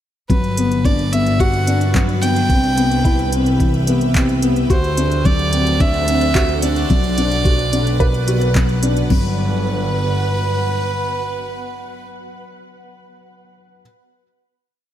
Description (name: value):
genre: piano and strings electronica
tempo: 109 BPM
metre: 4/4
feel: straight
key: G major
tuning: A4 = 440 Hz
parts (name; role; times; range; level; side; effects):
- warm violin; melody; 0.3-12.1 s; B4 to G5; -23 LUFS; right 1 dB; tape echo
- granular cloud pad; sustained chords; 1.1-12.1 s; B3 to F#5; -26 LUFS; right 2 dB; built-in reverb, sidechain pumping
- felt-muted upright piano; riff; 0.3-13.8 s; E3 to B4; -19 LUFS; left 3 dB; tape echo
- clear studio double bass section; bass; 0.3-10.7 s; G1 to D2; -20 LUFS; right 1 dB; sidechain pumping
- deep house drum kit; drums; 0.3-9.2 s; crash cymbal, handclaps, hi-hat; -27 LUFS; right 1 dB; none
- electronic kick drum; drums; 0.3-9.2 s; none; -16 LUFS; equal; none
room: light reverb, small room ambience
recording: none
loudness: -14 LUFS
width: side -11 dB against mid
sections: 0.3-9.1 drop; 9.1-11.3 final chord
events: drop 0.3-9.1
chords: 0.3 Gmaj7; 2.5 Cmaj7; 4.7 D7; 6.9 Bm; 9.1 Gmaj7